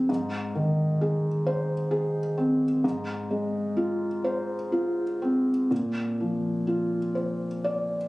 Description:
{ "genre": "neoclassical minimalist piano", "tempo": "40-44 BPM (dotted quarters)", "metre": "6/8", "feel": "rubato", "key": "F dorian", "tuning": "A4 = 436 Hz", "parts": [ { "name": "felt-muted upright piano", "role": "solo", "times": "0.0-8.1 s", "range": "Ab2 to D5", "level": "-24 LUFS", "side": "equal", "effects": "none" } ], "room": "little or no reverb", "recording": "recorded on a phone in the room, club reverb, compression, nothing above 10.7 kHz", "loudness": "-24 LUFS", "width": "side -20 dB against mid", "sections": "0.0-8.1 A section", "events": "none", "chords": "0.1 Ab; 2.8 Fm/Ab; 5.7 Bbadd9", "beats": "| 0.09 1.46 | 2.83 4.25 | 5.71 7.17" }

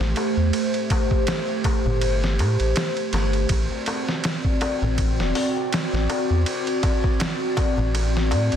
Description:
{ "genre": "trip hop", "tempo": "81 BPM", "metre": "4/4", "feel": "swing 56% on 16ths", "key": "unclear", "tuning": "A4 = 441 Hz", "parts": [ { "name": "dark analog pad", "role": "sustained chords", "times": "0.0-8.6 s", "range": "A3 to D5", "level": "-24 LUFS", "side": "equal", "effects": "chorus, phaser" }, { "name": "warm sub bass", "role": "bass", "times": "0.0-8.6 s", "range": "E1 to A2", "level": "-22 LUFS", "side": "equal", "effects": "none" }, { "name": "trip hop sampler-style drum kit", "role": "drums", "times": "0.0-8.6 s", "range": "hi-hat, kick drum, ride cymbal, snare drum", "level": "-25 LUFS", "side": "equal", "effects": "studio reverb" }, { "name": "darbuka", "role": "percussion", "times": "0.0-8.6 s", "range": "none", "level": "-33 LUFS", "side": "left 1 dB", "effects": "none" } ], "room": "light reverb", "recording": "dense, heavily limited modern master", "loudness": "-20 LUFS", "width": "side -9 dB against mid", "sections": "0.0-8.6 A section", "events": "none", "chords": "0.0 Am7; 3.5 D7", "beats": "| 0.54 1.28 2.02 2.76 | 3.50 4.24 4.98 5.72 | 6.46 7.21 7.95" }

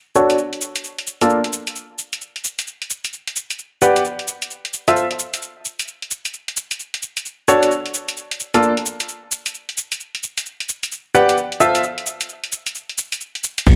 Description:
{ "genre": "UK garage, two-step garage", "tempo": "131 BPM", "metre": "4/4", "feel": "swing 63% on 16ths", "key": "unclear", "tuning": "A4 = 440 Hz", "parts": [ { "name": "bright grand piano", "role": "stabs", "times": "0.2-11.8 s", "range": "A#3 to F#5", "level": "-18 LUFS", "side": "equal", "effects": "low-pass filter, digital delay" }, { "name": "punchy analog drum machine", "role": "drums", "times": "0.2-13.8 s", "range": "crash cymbal, hi-hat, shaker", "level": "-26 LUFS", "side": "equal", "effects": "overdrive" }, { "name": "dark detuned saw bass", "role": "bass", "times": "13.7-13.8 s", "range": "B1", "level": "-12 LUFS", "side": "equal", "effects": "none" }, { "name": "electronic kick drum", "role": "drums", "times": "13.7-13.8 s", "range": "none", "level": "-13 LUFS", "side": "equal", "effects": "overdrive" } ], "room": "light reverb", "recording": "none", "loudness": "-21 LUFS", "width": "mono", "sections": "0.0-13.7 A section", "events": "filter sweep on grand piano 0.0-13.7", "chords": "0.0 Dmaj7; 0.6 A#maj7; 2.4 Gmaj7; 4.3 Fmaj7; 6.3 Dmaj7; 7.9 A#maj7; 9.8 Gmaj7; 11.6 Fmaj7", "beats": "0.38 | 0.84 1.30 1.76 2.22 | 2.67 3.13 3.59 4.05 | 4.51 4.96 5.42 5.88 | 6.34 6.80 7.25 7.71 | 8.17 8.63 9.09 9.54 | 10.00 10.46 10.92 11.38 | 11.83 12.29 12.75 13.21 | 13.67" }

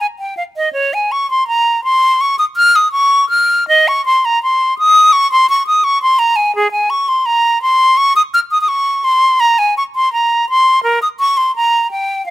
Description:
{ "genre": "classical, baroque-style fantasia for unaccompanied flute", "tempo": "84 BPM", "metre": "4/4", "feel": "rubato", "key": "unclear", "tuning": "A4 = 440 Hz", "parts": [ { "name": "bright silver concert flute", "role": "solo", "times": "0.0-12.3 s", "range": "Ab4 to F6", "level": "-10 LUFS", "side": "equal", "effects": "none" } ], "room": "little or no reverb", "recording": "close, detailed microphones", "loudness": "-10 LUFS", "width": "side -15 dB against mid", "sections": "0.0-12.3 A section", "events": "none", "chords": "none", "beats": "0.01 | 0.74 1.48 2.21 2.93 | 3.68 4.42 5.13 5.85 | 6.56 7.27 7.98 8.69 | 9.41 10.13 10.85 11.57 | 12.29" }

